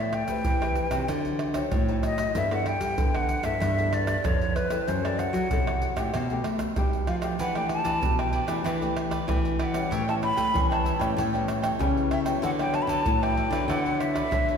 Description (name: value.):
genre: samba and choro.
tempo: 95 BPM.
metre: 4/4.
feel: straight.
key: D major.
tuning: A4 = 441 Hz.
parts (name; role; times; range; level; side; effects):
breathy mellow silver concert flute; melody; 0.0-14.6 s; B4 to B5; -29 LUFS; left 1 dB; none.
nylon-string guitar; accompaniment; 0.0-14.6 s; A2 to B4; -32 LUFS; left 4 dB; none.
nylon-string guitar; bass; 0.0-14.6 s; F2 to A3; -29 LUFS; left 1 dB; none.
pandeiro, tamborim, egg shaker and surdo; percussion; 0.1-14.6 s; none; -29 LUFS; right 2 dB; none.
cavaquinho; accompaniment; 7.4-14.6 s; E4 to G5; -32 LUFS; right 2 dB; none.
room: wet scoring stage reverb, RT60 1.9 s.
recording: recorded in a church or concert hall.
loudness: -23 LUFS.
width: side -7 dB against mid.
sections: 0.0-14.6 A section.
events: none.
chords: 0.0 Am9; 1.1 D7b9; 2.4 G69; 4.9 F#m7b5; 6.1 B7alt; 7.4 Em7; 9.9 A9; 12.4 D69.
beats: 0.46 1.09 1.72 | 2.35 2.98 3.61 4.24 | 4.87 5.50 6.13 6.76 | 7.39 8.02 8.65 9.28 | 9.91 10.54 11.17 11.80 | 12.43 13.06 13.69 14.32.